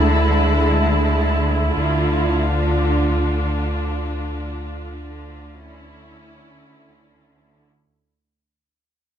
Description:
cinematic; free time; A4 = 440 Hz
rich symphonic viola section; accompaniment; 0.0-7.7 s; G#3 to F4; -23 LUFS; right 1 dB
rich symphonic cello section; bass; 0.0-7.7 s; D3; -25 LUFS; right 1 dB
rich symphonic double bass section; bass; 0.0-7.7 s; D2; -28 LUFS; right 4 dB
pure sine sub bass; drone; 0.0-7.9 s; D2; -22 LUFS; left 1 dB
warm symphonic violin section; texture; 0.0-1.4 s; A5 to Bb5; -28 LUFS; left 4 dB
light reverb; close, detailed microphones; -17 LUFS; side -9 dB against mid
0.0-7.9 A section
fade-out 0.0-7.9
0.0 E/D; 1.8 Dm; 4.8 C#m/D

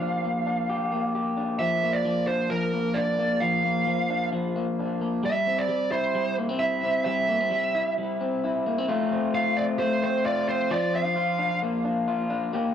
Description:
indie pop; 132 BPM; 4/4; straight; A4 = 439 Hz
smooth overdriven lead guitar; melody; 0.0-11.6 s; Bb4 to F5; -26 LUFS; right 3 dB
electric guitar through a small old amp; arpeggios; 0.0-12.7 s; F3 to G4; -26 LUFS; left 2 dB; spring reverb, cassette tape, analog delay
moderate small room reverb, RT60 0.5 s; home recording on cassette; -23 LUFS; side -9 dB against mid
0.0-1.6 A section; 1.6-8.9 B section; 8.9-12.7 C section
0.0 Gm7/F; 1.6 Bb; 5.2 C; 8.9 F; 10.7 Bb

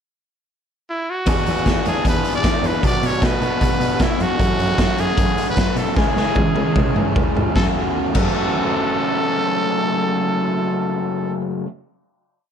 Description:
indie rock; 152 BPM; 4/4; straight; F# minor; A4 = 440 Hz
growling trumpet; melody; 0.9-11.4 s; E4 to D5; -24 LUFS; right 1 dB; slapback echo
overdriven electric guitar; riff; 1.3-11.7 s; F#2 to G#4; -24 LUFS; left 10 dB
raw garage guitar; riff; 1.3-11.7 s; E2 to G#4; -24 LUFS; right 9 dB; overdrive, lush chorus
rich cello; bass; 1.3-8.2 s; C#2 to B2; -24 LUFS; equal
raw garage drum kit; drums; 1.3-8.3 s; crash cymbal, hi-hat, kick drum, snare drum, toms; -20 LUFS; equal
light reverb; dark, warm production; -17 LUFS; side -7 dB against mid
0.0-1.3 pickup bar; 1.3-7.6 pre-chorus; 7.6-10.7 final chord
drum fill 6.0-7.6
0.0 N.C.; 1.3 E7; 2.8 Bm; 4.4 F#m; 6.0 C#m; 7.6 F#m

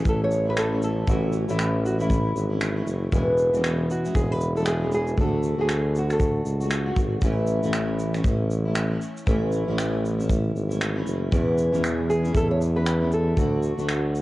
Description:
acoustic pop; 117 BPM; 4/4; swing 60% on 16ths; A major; A4 = 440 Hz
nylon-string guitar; melody; 0.0-6.9, 12.1-14.2 s; E4 to C#5; -28 LUFS; equal; cassette tape, tape echo
picked steel-string acoustic guitar; accompaniment; 0.0-14.2 s; E2 to F#4; -28 LUFS; equal; double-tracked left and right
warm tuba; bass; 0.0-14.2 s; E1 to E2; -24 LUFS; equal
modern studio drum kit; drums; 0.1-14.2 s; finger snaps, kick drum, shaker; -27 LUFS; equal
light reverb, small room ambience; home recording on cassette, nothing above 10.9 kHz; -21 LUFS; side -18 dB against mid
0.0-14.2 A section
0.0 A; 3.1 E6; 5.2 D; 7.2 A; 11.3 E6; 13.4 D

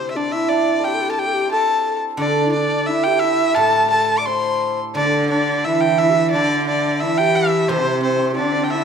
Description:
chinese traditional, Chinese chamber ensemble; 88 BPM; 2/4; rubato; D shang mode; A4 = 439 Hz
clear erhu; melody; 0.0-8.8 s; C5 to D6; -20 LUFS; left 2 dB
hammered dulcimer; second line; 0.0-8.8 s; C4 to C5; -21 LUFS; right 8 dB
mellow low xiao; second line; 0.0-8.8 s; D4 to D5; -23 LUFS; left 6 dB
guzheng; accompaniment; 0.0-8.8 s; A2 to D3; -26 LUFS; equal
clear cello; second line; 5.0-8.8 s; C3 to E3; -24 LUFS; right 4 dB
wet recital hall reverb, RT60 1.4 s; minimal, uncompressed stereo recording; -16 LUFS; side -7 dB against mid
0.0-8.8 A section

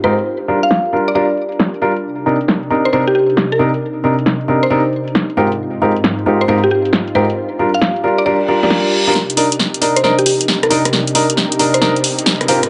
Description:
UK garage, two-step garage; 135 BPM; 4/4; swing 66% on 16ths; C minor; A4 = 439 Hz
mallet-like synth pluck; melody; 0.0-12.2 s; G4 to F5; -20 LUFS; equal; chorus, cassette tape
warm analog pad; sustained chords; 0.0-12.7 s; Ab2 to Bb4; -25 LUFS; equal; chorus, vintage 12-bit sampler grit
clear baby grand piano; stabs; 0.0-12.6 s; Ab2 to Bb4; -18 LUFS; equal; low-pass filter
punchy analog drum machine; drums; 0.2-12.7 s; hi-hat, rim click, snare drum; -18 LUFS; equal; low-pass filter on hats, low-pass filter on snare, low-pass filter on room
reverse cymbal and riser; sound effects; 8.4-12.7 s; -27 LUFS; equal
moderate plate reverb, RT60 1.1 s; high-pass filter, nothing above 10.4 kHz; -15 LUFS; mono
0.0-9.2 A section; 9.2-12.7 B section
filter sweep on analog synth pad 0.0-9.2; reverse cymbal 8.4-9.2; build-up 9.2-12.7; drum fill 9.2-12.7
0.3 Gm7; 2.0 Cm7; 5.4 Abmaj13; 7.4 Gm7; 9.2 Cm7

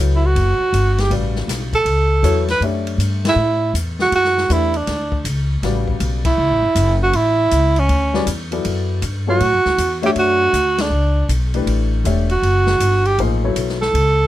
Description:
modal jazz; 159 BPM; 4/4; swing 65% on 8ths; D major; A4 = 440 Hz
warm baby grand piano; accompaniment; 0.0-13.8 s; C#3 to E5; -22 LUFS; left 5 dB
upright bass; bass; 0.0-14.3 s; E1 to A2; -18 LUFS; equal
breathy tenor saxophone; melody; 0.2-14.3 s; C#4 to B4; -16 LUFS; right 2 dB
open jazz drum kit; drums; 0.4-14.1 s; hi-hat, kick drum, ride cymbal, snare drum; -27 LUFS; left 2 dB
light reverb; close, detailed microphones; -15 LUFS; side -14 dB against mid
0.0-14.3 A section
band accent 3.2, 6.2, 10.7
0.0 Dmaj9

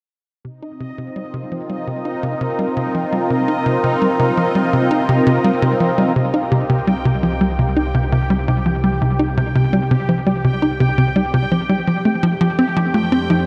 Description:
ambient; 84 BPM; 4/4; straight; C dorian; A4 = 440 Hz
lush unison pad; sustained chords; 0.8-13.5 s; A3 to C5; -24 LUFS; equal; chorus, phaser, shimmer reverb
tight sequencer bass; riff; 0.4-13.5 s; C3 to Eb4; -20 LUFS; equal; analog chorus, cassette tape, tape echo
bubbling stepped-filter texture; texture; 0.4-13.5 s; Eb4 to G5; -27 LUFS; equal; chorus, built-in reverb, shimmer reverb
unison pluck; arpeggios; 6.2-13.5 s; C4 to F4; -33 LUFS; equal
fat analog bass; bass; 6.2-13.5 s; C2; -26 LUFS; equal
wet huge ambient reverb, RT60 8.5 s; -17 LUFS; mono
0.4-6.2 A section; 6.2-13.5 B section
fade-in on analog synth bass 0.4-6.2; fade-in on analog synth pad 6.2-13.5
0.4 Cm7; 11.9 F7

